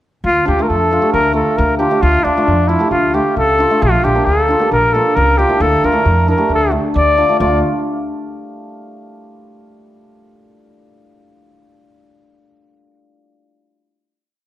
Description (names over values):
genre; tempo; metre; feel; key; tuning
klezmer; 134 BPM; 4/4; straight; D harmonic minor; A4 = 440 Hz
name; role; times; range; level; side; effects
upright bass; bass; 0.2-7.6 s; Bb1 to F2; -18 LUFS; equal; none
mellow cornet; melody; 0.3-7.6 s; D4 to D5; -14 LUFS; left 1 dB; none
hammered dulcimer; accompaniment; 0.5-7.6 s; A3 to G4; -18 LUFS; right 1 dB; none
room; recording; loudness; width
moderate recital hall reverb, RT60 1.4 s; none; -12 LUFS; side -13 dB against mid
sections
0.2-7.4 A section; 7.4-9.2 final chord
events
none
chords
0.2 Dm; 3.8 Bb; 5.6 Dm